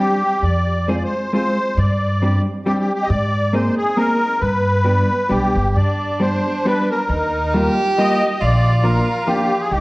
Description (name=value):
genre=musette waltz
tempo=136 BPM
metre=3/4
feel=swing 54% on 8ths, rubato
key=unclear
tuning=A4 = 440 Hz
part: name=musette accordion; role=melody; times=0.0-9.8 s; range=G4 to Eb5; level=-20 LUFS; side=equal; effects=none
part: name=vintage hollow-body jazz guitar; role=accompaniment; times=0.0-9.5 s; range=F3 to Ab4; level=-21 LUFS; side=equal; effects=none
part: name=upright bass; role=bass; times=0.4-9.8 s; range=G1 to Ab2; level=-19 LUFS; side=equal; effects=tube saturation
part: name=rich violin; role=second line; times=5.8-9.8 s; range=D4 to G4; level=-22 LUFS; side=right 2 dB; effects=none
room=wet recital hall reverb, RT60 1.5 s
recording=worn, warbling old tape, cassette tape, warbly pitch drift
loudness=-15 LUFS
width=side -21 dB against mid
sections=0.0-9.8 A section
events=none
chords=0.4 Fm; 1.8 Gsus4; 3.1 Abadd9; 4.4 G; 7.1 Ebadd9; 8.4 Bb